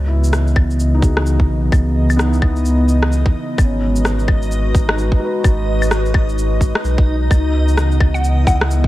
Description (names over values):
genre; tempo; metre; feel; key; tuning
future garage; 129 BPM; 4/4; swing 60% on 16ths; C# minor; A4 = 440 Hz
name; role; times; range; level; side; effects
warbly tape-like pad; sustained chords; 0.0-8.9 s; C#3 to D#5; -22 LUFS; equal; chorus, built-in reverb, sidechain pumping
warm sub bass; bass; 0.0-8.9 s; G#1 to C#2; -16 LUFS; equal; tube saturation, sidechain pumping
backwards swelling texture; texture; 0.8-8.9 s; D#4 to D#5; -28 LUFS; left 2 dB; built-in reverb
felt-muted upright piano; accompaniment; 0.1-8.9 s; B3 to B4; -26 LUFS; left 2 dB; sidechain pumping, tape echo
electronic shaker, rim click and claves; drums; 0.2-8.8 s; none; -22 LUFS; left 1 dB; none
electronic kick drum; drums; 0.6-8.9 s; none; -14 LUFS; equal; none
hollow square pluck; melody; 8.1-8.7 s; F#5; -22 LUFS; left 1 dB; chorus, cassette tape
room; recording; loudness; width
light reverb, digital ambience; none; -13 LUFS; side -16 dB against mid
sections
0.0-8.9 A section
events
none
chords
0.0 C#m9; 3.6 G#m7; 7.3 C#m9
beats
0.33 0.80 1.26 | 1.73 2.19 2.66 3.12 | 3.59 4.05 4.52 4.98 | 5.45 5.91 6.38 6.84 | 7.31 7.77 8.24 8.70